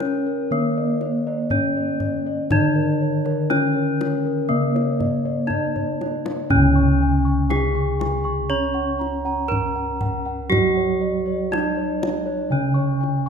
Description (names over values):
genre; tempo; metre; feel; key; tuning
Javanese gamelan; 60 BPM; 4/4; straight; C# pelog barang; A4 = 441 Hz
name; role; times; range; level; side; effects
gamelan-type bronze metallophone; melody; 0.0-13.3 s; A#3+20c to C#5; -23 LUFS; equal; none
gamelan-type bronze metallophone; accompaniment; 0.0-13.3 s; C#3 to C#4; -26 LUFS; right 2 dB; none
gamelan-type bossed gongs; arpeggios; 0.0-13.3 s; A#4+20c to C#6; -29 LUFS; left 3 dB; none
gamelan-type bronze metallophone; arpeggios; 0.0-13.3 s; A#4+20c to C#6; -30 LUFS; right 3 dB; none
gamelan-type bossed gongs; bass; 0.0-13.3 s; C#2 to C#5; -25 LUFS; left 1 dB; none
kendang; percussion; 0.0-13.2 s; none; -29 LUFS; left 1 dB; none
room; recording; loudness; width
moderate concert hall reverb, RT60 2.3 s; minimal, uncompressed stereo recording; -19 LUFS; side -6 dB against mid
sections
0.0-13.3 A section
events
drum fill 5.5-6.5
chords
none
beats
0.51 1.51 | 2.51 3.51 4.51 5.51 | 6.51 7.51 8.51 9.51 | 10.51 11.51 12.51